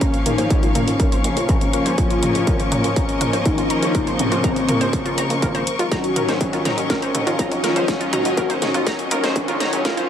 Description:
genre	melodic techno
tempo	122 BPM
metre	4/4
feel	straight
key	Bb minor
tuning	A4 = 440 Hz
part	wide unison lead	melody	0.0-10.1 s	C4 to Gb4	-25 LUFS	left 1 dB	sidechain pumping, tape echo
part	rich symphonic string section	sustained chords	0.0-10.1 s	Db3 to Db6	-27 LUFS	left 2 dB	sidechain pumping
part	wide unison pluck	arpeggios	0.0-10.0 s	F4 to Bb5	-26 LUFS	equal	sidechain pumping, tape echo
part	brassy analog pad	stabs	0.0-10.1 s	Db3 to Db4	-24 LUFS	left 1 dB	chorus, sidechain pumping, dub echo
part	electronic kick drum	drums	0.0-9.9 s	none	-22 LUFS	equal	distortion
part	techno drum kit	drums	0.0-10.1 s	hi-hat, snare drum, toms	-26 LUFS	right 1 dB	dub echo
part	plucky analog bass	bass	0.3-9.8 s	Eb1 to Bb2	-27 LUFS	equal	sidechain pumping, high-pass filter
part	riser	sound effects	8.0-10.1 s	none	-33 LUFS	right 3 dB	none
room	moderate plate reverb, RT60 1.4 s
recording	echo-heavy mix, high-pass filter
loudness	-17 LUFS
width	side -9 dB against mid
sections	0.0-10.1 A section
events	build-up 0.0-10.1; filter sweep on synth pluck 0.0-10.1; filter sweep on analog synth lead 0.0-10.1; filter sweep 0.0-10.1; drum fill 5.9-10.1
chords	0.0 Bbm; 5.9 Ebm7

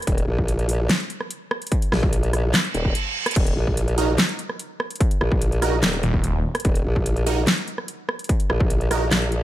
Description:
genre	heavy wobble dubstep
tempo	146 BPM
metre	4/4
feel	half-time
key	Eb minor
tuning	A4 = 440 Hz
part	dubstep drum kit	drums	0.0-9.4 s	crash cymbal, handclaps, hi-hat, rim click, snare drum	-23 LUFS	equal	none
part	formant-sweep wobble bass	bass	0.1-9.4 s	Eb1 to Bb1	-22 LUFS	equal	chorus, overdrive
part	electronic kick drum	drums	0.1-8.7 s	none	-22 LUFS	equal	distortion
part	reverse cymbal	sound effects	2.7-3.4 s	none	-28 LUFS	right 6 dB	none
part	supersaw stab	stabs	4.0-9.0 s	Eb4 to Bb4	-27 LUFS	right 4 dB	digital delay
part	snarling distorted saw bass	bass	6.0-6.4 s	Eb1	-22 LUFS	equal	distortion, overdrive
room	digital ambience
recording	none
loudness	-19 LUFS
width	side -14 dB against mid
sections	0.0-9.4 A section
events	reverse cymbal 2.7-3.4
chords	0.0 Eb5

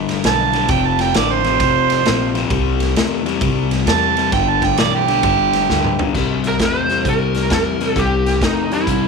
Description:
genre	electric blues shuffle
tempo	132 BPM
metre	4/4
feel	swing 65% on 8ths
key	C mixolydian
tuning	A4 = 440 Hz
part	overdriven semi-hollow guitar	riff	0.0-9.1 s	F2 to A3	-20 LUFS	left 14 dB	none
part	upright bass	bass	0.0-9.1 s	F1 to E2	-22 LUFS	right 1 dB	none
part	raw garage drum kit	drums	0.1-9.0 s	crash cymbal, hi-hat, kick drum, ride cymbal, snare drum, toms	-21 LUFS	right 1 dB	none
part	mellow harmonica	second line	0.3-6.1 s	G4 to A5	-17 LUFS	right 13 dB	overdrive
part	lead guitar through a small cranked amp	melody	6.5-9.1 s	Eb4 to C5	-19 LUFS	right 2 dB	overdrive
room	light reverb, studio ambience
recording	1960s-style stereo with parts hard left and right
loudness	-14 LUFS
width	side -4 dB against mid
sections	0.0-6.1 A section; 6.1-9.1 B section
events	harmonica solo 0.0-6.1; drum fill 5.7-6.1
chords	0.0 G; 0.7 F; 2.5 C; 4.3 G; 6.1 C7

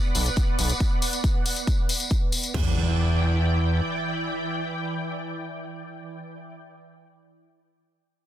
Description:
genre	uplifting trance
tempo	138 BPM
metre	4/4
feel	straight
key	E minor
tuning	A4 = 440 Hz
part	analog string pad	sustained chords	0.0-6.5 s	E3 to G5	-30 LUFS	right 2 dB	ensemble chorus, sidechain pumping
part	sub drop and impact	sound effects	0.3-6.5 s	none	-36 LUFS	equal	none
part	tambourine	percussion	0.1-2.5 s	none	-30 LUFS	left 2 dB	none
part	gritty driven synth bass	bass	0.2-3.8 s	B1 to E2	-22 LUFS	equal	sidechain pumping
part	electronic hi-hat	drums	0.2-2.5 s	none	-31 LUFS	left 5 dB	overdrive
part	techno drum kit	drums	0.4-2.6 s	crash cymbal, kick drum, toms	-24 LUFS	equal	none
room	little or no reverb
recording	dense, heavily limited modern master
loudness	-22 LUFS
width	side -12 dB against mid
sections	0.0-2.5 A section; 2.5-6.0 B section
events	impact 0.0-0.8; filter sweep on analog synth pad 0.0-2.5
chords	0.0 Bm; 2.5 Em7

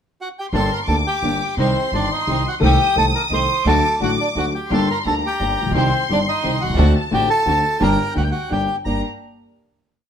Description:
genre	tango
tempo	173 BPM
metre	3/4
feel	rubato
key	G harmonic minor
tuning	A4 = 441 Hz
part	bandoneon	melody	0.2-9.0 s	C4 to C6	-21 LUFS	right 1 dB	none
part	warm symphonic violin section	second line	0.5-9.0 s	G5 to Eb6	-25 LUFS	left 2 dB	none
part	warm grand piano	accompaniment	0.5-9.0 s	G1 to A4	-22 LUFS	left 3 dB	none
part	warm symphonic string section	stabs	0.5-9.0 s	G3 to G4	-27 LUFS	right 1 dB	none
part	upright bass	bass	0.5-9.0 s	G1 to D2	-22 LUFS	right 1 dB	none
room	moderate studio reverb, RT60 0.8 s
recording	minimal, uncompressed stereo recording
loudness	-16 LUFS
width	side -8 dB against mid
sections	0.0-0.5 pickup bar; 0.5-8.9 A section; 8.9-9.9 final chord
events	none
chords	0.0 N.C.; 0.5 Gm; 1.6 Cm; 2.6 Adim/C; 3.7 D; 4.7 Gm; 5.7 Cm; 6.8 D7; 7.8 Gm

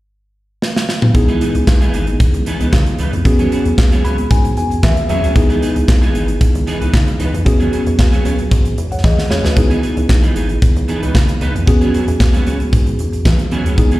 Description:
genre	early-eighties boogie funk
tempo	114 BPM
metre	4/4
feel	straight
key	E major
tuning	A4 = 440 Hz
part	modern studio drum kit	drums	0.6-14.0 s	handclaps, hi-hat, kick drum, snare drum, toms	-14 LUFS	equal	none
part	mellow tine electric piano	accompaniment	1.1-14.0 s	B3 to B5	-19 LUFS	left 1 dB	medium stereo tremolo, slapback echo
part	clean electric guitar	riff	1.1-14.0 s	E3 to B4	-22 LUFS	right 3 dB	ensemble chorus, slapback echo
part	rubbery square bass	bass	1.1-14.0 s	G#1 to E3	-17 LUFS	equal	none
room	little or no reverb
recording	live gig heard through the venue's PA, recital hall reverb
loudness	-12 LUFS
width	side -17 dB against mid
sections	0.0-1.1 A section; 1.1-14.0 B section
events	drum fill 0.6-1.1, 9.0-9.6; tine electric piano fill 3.8-5.4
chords	0.0 N.C.; 1.1 C#m9; 3.3 E69; 5.4 C#m9; 7.5 E69; 9.6 C#m9; 11.7 E69

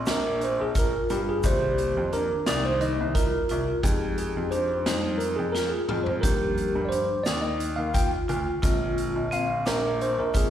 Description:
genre	progressive instrumental, band music in an uneven meter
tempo	175 BPM (eighths)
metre	7/8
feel	straight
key	Eb major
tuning	A4 = 440 Hz
part	warm concert grand piano	bass	0.0-10.5 s	Bb1 to G2	-30 LUFS	equal	none
part	tine electric piano	accompaniment	0.1-10.5 s	D3 to G5	-27 LUFS	equal	medium stereo tremolo, slapback echo
part	vibraphone with medium hard mallets	arpeggios	0.1-10.5 s	C4 to Ab4	-31 LUFS	left 1 dB	slapback echo
part	street-band drum kit	drums	0.1-10.5 s	hi-hat, kick drum, snare drum, toms	-28 LUFS	equal	none
part	egg shaker	percussion	0.1-10.5 s	none	-44 LUFS	left 3 dB	none
room	light reverb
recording	live gig heard through the venue's PA, recital hall reverb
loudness	-23 LUFS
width	side -10 dB against mid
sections	0.0-10.5 A section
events	tine electric piano solo 0.0-10.5; drum fill 5.6-6.2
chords	0.0 Bb7; 1.4 Cm7; 3.8 Fm7; 6.2 Ebmaj7; 8.6 Bb7

